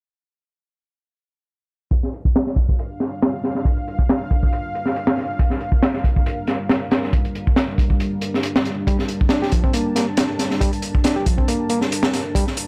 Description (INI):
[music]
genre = breakbeat, breaks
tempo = 138 BPM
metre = 4/4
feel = swing 53% on 16ths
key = G minor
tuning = A4 = 441 Hz
[part]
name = dark analog pad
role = sustained chords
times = 2.5-12.7 s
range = G3 to A5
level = -29 LUFS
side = equal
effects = chorus, sidechain pumping
[part]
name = crunchy breakbeat drum kit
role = drums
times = 1.9-12.7 s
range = hi-hat, kick drum, snare drum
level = -21 LUFS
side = equal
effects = low-pass filter on kick, low-pass filter on hats, low-pass filter on snare, low-pass filter on room
[part]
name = overdriven reed electric piano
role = riff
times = 8.9-12.4 s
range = F3 to G4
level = -26 LUFS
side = equal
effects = delay
[sound]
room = little or no reverb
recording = none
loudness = -20 LUFS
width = mono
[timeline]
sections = 1.9-12.7 A section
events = filter sweep on drum 1.9-12.7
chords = 1.9 Gm7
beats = | 1.92 2.35 2.79 3.22 | 3.65 4.09 4.52 4.96 | 5.39 5.83 6.26 6.70 | 7.13 7.57 8.00 8.44 | 8.87 9.31 9.74 10.18 | 10.61 11.05 11.48 11.91 | 12.35